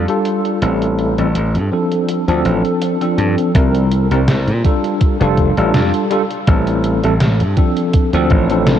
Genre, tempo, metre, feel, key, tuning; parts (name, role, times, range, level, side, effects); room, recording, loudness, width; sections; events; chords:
vaporwave; 82 BPM; 4/4; swing 54% on 16ths; F major; A4 = 440 Hz
barky tine electric piano; accompaniment; 0.0-8.8 s; F3 to Bb4; -16 LUFS; equal; medium stereo tremolo, analog chorus, ping-pong delay
slap bass; bass; 0.0-8.8 s; F1 to Bb2; -16 LUFS; equal
detuned 8-bit digital drum machine; drums; 0.1-8.8 s; hi-hat, snare drum; -21 LUFS; equal
electronic kick drum; drums; 3.5-8.5 s; -14 LUFS; equal
moderate huge ambient reverb, RT60 8.8 s; dreamy mix soaked in reverb, cassette tape, low-pass filter; -13 LUFS; side -10 dB against mid
0.0-3.5 A section; 3.5-8.8 B section
0.0 F69; 0.6 Am7; 2.1 Dm7; 3.5 C7; 5.0 F69; 6.5 Am7; 7.9 Dm7